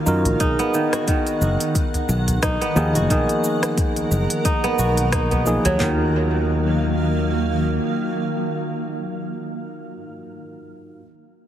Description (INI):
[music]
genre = organic downtempo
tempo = 89 BPM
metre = 4/4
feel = swing 56% on 16ths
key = Eb minor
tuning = A4 = 437 Hz
[part]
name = tine electric piano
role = accompaniment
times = 0.0-11.0 s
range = F3 to Bb4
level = -25 LUFS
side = right 1 dB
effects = sidechain pumping, tape echo
[part]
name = granular cloud pad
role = sustained chords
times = 0.0-9.3 s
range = D#3 to F#5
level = -26 LUFS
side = equal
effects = built-in reverb, sidechain pumping
[part]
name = kora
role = arpeggios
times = 0.0-8.1 s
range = Eb3 to F#4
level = -24 LUFS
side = equal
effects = tape echo
[part]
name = bronze singing bowl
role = texture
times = 0.0-5.8 s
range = none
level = barely audible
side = none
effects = none
[part]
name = fretless electric bass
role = bass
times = 0.1-7.8 s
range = F#1 to Gb2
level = -21 LUFS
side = equal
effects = sidechain pumping
[part]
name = deep house drum kit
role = drums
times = 0.1-5.8 s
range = hi-hat, rim click, shaker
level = -27 LUFS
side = equal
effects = none
[part]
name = udu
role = percussion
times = 0.3-5.8 s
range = none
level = -27 LUFS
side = equal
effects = none
[part]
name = deep house drum kit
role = drums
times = 0.4-6.0 s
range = handclaps, kick drum, snare drum, toms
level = -23 LUFS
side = equal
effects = none
[sound]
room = light reverb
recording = heavily compressed radio sound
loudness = -18 LUFS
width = side -10 dB against mid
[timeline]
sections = 0.0-5.8 A section; 5.8-8.5 B section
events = none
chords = 0.4 B; 5.8 Ebmadd9